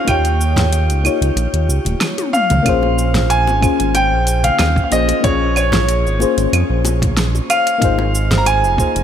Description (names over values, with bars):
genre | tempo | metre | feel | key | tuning
sunset chillout | 93 BPM | 4/4 | straight | unclear | A4 = 440 Hz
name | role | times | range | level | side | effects
bright concert grand piano | melody | 0.0-9.0 s | Db5 to Bb5 | -18 LUFS | equal | digital delay, shimmer reverb
mellow FM electric piano | accompaniment | 0.0-9.0 s | Bb3 to Db5 | -20 LUFS | moving between left 7 dB and right 3 dB | chorus, phaser, auto-pan, digital delay, shimmer reverb
round analog bass | bass | 0.1-9.0 s | Eb1 to F2 | -17 LUFS | right 1 dB | none
deep house drum kit | drums | 0.1-9.0 s | cabasa, claves, hi-hat, snare drum, toms | -21 LUFS | right 1 dB | overdrive
electronic kick drum | drums | 0.1-8.9 s | none | -20 LUFS | right 1 dB | none
congas and bongos | percussion | 0.6-8.6 s | none | -24 LUFS | left 1 dB | none
room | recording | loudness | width
light reverb, digital ambience | none | -13 LUFS | side -9 dB against mid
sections
0.0-2.7 A section; 2.7-9.0 B section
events
kick drops out 1.4-2.7; drum fill 2.2-2.7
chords
0.1 Eb9; 2.7 Bbm7; 7.8 Ab69